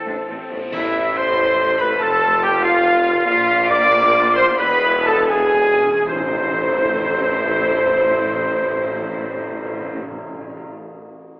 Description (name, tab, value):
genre	cinematic, heroic adventure film score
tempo	75-97 BPM (dotted quarters)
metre	6/8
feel	straight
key	A minor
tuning	A4 = 440 Hz
part	rich chamber violin section	melody	0.0-10.0 s	A4 to D6	-25 LUFS	left 1 dB	none
part	clear clarinet	second line	0.0-0.7 s	B3 to D4	-37 LUFS	equal	none
part	clear symphonic violin section	second line	0.0-10.0 s	C4 to D6	-29 LUFS	equal	none
part	flute section	second line	0.0-10.0 s	A4 to D6	-27 LUFS	equal	none
part	mellow French horn section	sustained chords	0.0-10.0 s	E4 to D5	-21 LUFS	equal	none
part	concert harp	arpeggios	0.0-10.9 s	E2 to A5	-34 LUFS	left 1 dB	none
part	warm trumpet	stabs	0.0-10.0 s	E4 to D5	-21 LUFS	equal	none
part	timpani	percussion	0.0-1.3, 4.6-10.7 s	E2 to A2	-32 LUFS	equal	none
part	warm symphonic viola section	accompaniment	0.1-10.0 s	A3 to F4	-28 LUFS	equal	none
part	clear tuba	bass	0.1-10.0 s	E1 to Bb1	-26 LUFS	equal	none
part	warm symphonic cello section	bass	0.1-10.0 s	E2 to Bb2	-31 LUFS	equal	none
part	warm symphonic double bass section	bass	0.1-10.0 s	E1 to Bb1	-35 LUFS	equal	none
part	clear oboe	second line	0.7-10.0 s	E4 to D5	-21 LUFS	equal	none
part	clash cymbals, concert bass drum and tam-tam	percussion	0.7-1.5, 6.1-8.1 s	none	-33 LUFS	equal	none
room	wet scoring stage reverb, RT60 1.7 s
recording	telephone sound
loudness	-14 LUFS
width	side -24 dB against mid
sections	0.7-6.1 A section; 6.1-9.2 B section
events	band accent 0.7-1.2, 6.1-6.6; slowing down 2.6-6.1; timpani fill 4.6-6.1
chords	0.0 Am; 2.0 F; 3.3 Bb; 4.6 E; 6.1 Am